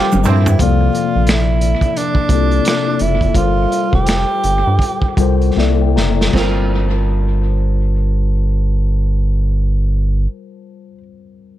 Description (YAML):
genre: R&B, neo-soul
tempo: 76-89 BPM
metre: 4/4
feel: swing 62% on 16ths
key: G dorian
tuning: A4 = 440 Hz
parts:
  - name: breathy tenor saxophone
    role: melody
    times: 0.0-5.5 s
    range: D4 to G4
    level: -19 LUFS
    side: right 3 dB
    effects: analog delay
  - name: mellow tine electric piano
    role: accompaniment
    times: 0.0-11.6 s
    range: C3 to Bb5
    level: -21 LUFS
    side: left 11 dB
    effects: analog delay
  - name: clear studio string section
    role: sustained chords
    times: 0.0-0.6 s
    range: none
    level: barely audible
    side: none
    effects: none
  - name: clear horn section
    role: stabs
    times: 0.0-0.5 s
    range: D3 to C4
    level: -22 LUFS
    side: right 8 dB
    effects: none
  - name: rubbery square bass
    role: bass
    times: 0.1-10.3 s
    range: F1 to G2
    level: -15 LUFS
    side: right 1 dB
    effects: none
  - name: crunchy breakbeat drum kit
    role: drums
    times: 0.1-6.6 s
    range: china cymbal, finger snaps, hi-hat, kick drum, snare drum, toms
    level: -19 LUFS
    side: equal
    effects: analog delay
  - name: egg shaker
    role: percussion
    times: 0.1-0.6 s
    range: none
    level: -34 LUFS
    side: right 7 dB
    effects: analog delay
  - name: archtop guitar, miked and amplified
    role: second line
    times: 6.3-11.0 s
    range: C4 to Bb4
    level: -27 LUFS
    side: right 9 dB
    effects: none
room: small room ambience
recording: echo-heavy mix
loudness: -13 LUFS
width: side -13 dB against mid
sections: 0.6-6.3 A section; 6.3-9.5 B section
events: drum fill 0.0-0.6, 5.6-6.3; band accent 0.0-0.6; slowing down 0.6-6.3; tine electric piano fill 5.2-6.3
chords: 0.0 Gm11; 0.6 C13sus4; 3.3 Gm11; 5.6 C13; 6.3 Gm11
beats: | 0.59 1.27 1.95 2.64 | 3.35 4.06 4.80 5.55 | 6.33 7.13 7.92 8.71